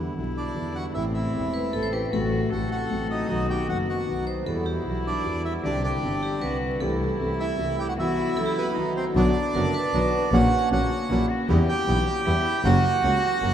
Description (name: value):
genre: tango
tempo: 154 BPM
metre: 3/4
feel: rubato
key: E minor, B harmonic minor from 9.1 s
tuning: A4 = 440 Hz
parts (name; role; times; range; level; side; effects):
- warm cello; second line; 0.0-13.5 s; C4 to A4; -33 LUFS; left 3 dB; none
- warm concert grand piano; accompaniment; 0.0-13.5 s; E1 to A4; -28 LUFS; left 2 dB; none
- bandoneon; stabs; 0.0-13.5 s; F#3 to F#4; -35 LUFS; right 3 dB; none
- clear double bass; bass; 0.0-13.5 s; E1 to E2; -27 LUFS; equal; none
- bandoneon; melody; 0.4-13.5 s; B3 to G5; -27 LUFS; right 3 dB; none
- vibraphone with hard mallets; second line; 1.5-10.2 s; F#4 to C5; -33 LUFS; equal; none
room: wet cathedral reverb, RT60 6.2 s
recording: in a vast, echoing space, vinyl crackle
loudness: -22 LUFS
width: side -9 dB against mid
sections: 0.0-9.1 A section; 9.1-13.5 B section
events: none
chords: 0.0 Em7; 1.0 Am; 2.1 F#dim/A; 3.3 B; 4.5 Emadd9; 5.6 Csus2; 6.8 Am/C; 8.0 Bsus4; 8.8 B; 9.1 Bm; 10.3 F#/A#; 11.5 Em; 12.6 F#